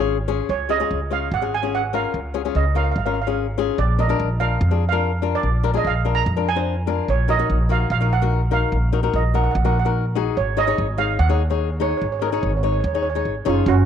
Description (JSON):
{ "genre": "calypso", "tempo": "146 BPM", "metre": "4/4", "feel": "straight", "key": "Db major", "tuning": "A4 = 440 Hz", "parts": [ { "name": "flamenco guitar", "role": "accompaniment", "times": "0.0-13.7 s", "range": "Db4 to Db5", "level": "-24 LUFS", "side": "left 11 dB", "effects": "none" }, { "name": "upright bass", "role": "bass", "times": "0.0-13.9 s", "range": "Gb1 to F2", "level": "-21 LUFS", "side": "equal", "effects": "none" }, { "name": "steel pan", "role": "melody", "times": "0.5-13.9 s", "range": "Db4 to Bb5", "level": "-24 LUFS", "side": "right 10 dB", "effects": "none" } ], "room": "light reverb, small room ambience", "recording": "1960s-style stereo with parts hard left and right", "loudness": "-18 LUFS", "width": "side -8 dB against mid", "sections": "0.5-13.7 A section", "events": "none", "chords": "0.5 Db; 3.8 Bb; 7.1 Ebm/Bb; 10.4 Absus4" }